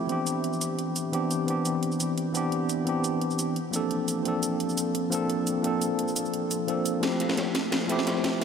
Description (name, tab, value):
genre	liquid drum and bass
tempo	173 BPM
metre	4/4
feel	straight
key	unclear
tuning	A4 = 437 Hz
part	tine electric piano	accompaniment	0.0-8.4 s	E3 to A4	-26 LUFS	equal	medium stereo tremolo, ping-pong delay
part	drum and bass drum kit	drums	0.1-8.4 s	cabasa, hi-hat, snare drum	-32 LUFS	right 1 dB	overdrive
part	crunchy breakbeat drum kit	drums	7.0-8.4 s	ride cymbal, snare drum	-34 LUFS	equal	high-pass filter on cymbals, high-pass filter on snare, high-pass filter on room
room	wet huge ambient reverb, RT60 8.4 s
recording	dreamy mix soaked in reverb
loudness	-25 LUFS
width	side -6 dB against mid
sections	0.0-7.0 A section; 7.0-8.4 B section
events	build-up 7.0-8.4; drum fill 7.0-8.4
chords	0.1 Cmaj9; 3.6 Bbmaj9; 7.0 Fmaj9